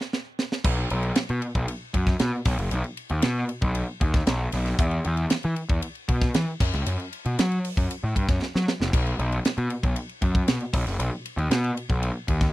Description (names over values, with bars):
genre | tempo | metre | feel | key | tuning
polished 1980s jazz-funk pop | 116 BPM | 4/4 | straight | unclear | A4 = 437 Hz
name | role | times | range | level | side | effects
tight funk drum kit | drums | 0.0-12.5 s | crash cymbal, hi-hat, kick drum, ride cymbal, snare drum | -26 LUFS | equal | none
fuzz picked electric bass | bass | 0.6-12.5 s | F#1 to F#3 | -25 LUFS | equal | overdrive
room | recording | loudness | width
little or no reverb | dry, close 1970s-style studio recording | -23 LUFS | side -17 dB against mid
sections
0.6-12.5 A section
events
drum fill 0.0-0.6, 8.4-8.9; band accent 0.0-0.6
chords
none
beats
0.13 | 0.64 1.16 1.68 2.20 | 2.72 3.23 3.75 4.27 | 4.79 5.31 5.82 6.34 | 6.86 7.38 7.89 8.41 | 8.93 9.44 9.96 10.48 | 10.99 11.51 12.02